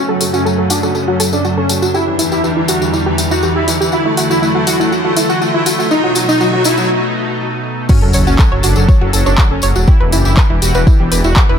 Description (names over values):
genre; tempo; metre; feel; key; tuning
melodic techno; 121 BPM; 4/4; straight; F# phrygian; A4 = 440 Hz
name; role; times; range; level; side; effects
soft supersaw; melody; 0.0-11.6 s; E3 to F#4; -17 LUFS; equal; sidechain pumping, ping-pong delay
lush unison pad; sustained chords; 0.0-11.6 s; E2 to A4; -20 LUFS; equal; chorus, vintage 12-bit sampler grit, sidechain pumping
soft round pluck; arpeggios; 0.0-11.5 s; D#4 to C#5; -18 LUFS; right 1 dB; chorus, sidechain pumping, digital delay
riser and sub drop; sound effects; 0.0-9.9 s; none; -21 LUFS; left 1 dB; none
punchy analog drum machine; drums; 0.2-11.5 s; crash cymbal, handclaps, hi-hat; -20 LUFS; equal; high-pass filter on hats, high-pass filter on cymbals, high-pass filter on snare
tambourine; percussion; 0.2-11.5 s; none; -23 LUFS; left 5 dB; none
electronic kick drum; drums; 7.9-11.5 s; none; -10 LUFS; equal; none
swelling detuned saw bass; bass; 8.0-11.6 s; E1 to F#1; -14 LUFS; equal; sidechain pumping
room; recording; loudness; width
light reverb, digital ambience; none; -11 LUFS; side -8 dB against mid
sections
0.0-7.9 A section; 7.9-11.6 B section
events
build-up 0.0-7.9; riser 0.0-6.9; filter sweep on synth arpeggio sound 0.0-7.9; filter sweep on supersaw synth 0.0-7.9; break 6.9-7.9; drop 7.9-11.6; impact 7.9-9.9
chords
0.0 F#m; 1.9 Em7; 3.9 Dadd9; 5.9 B7; 7.9 F#m; 9.9 Em7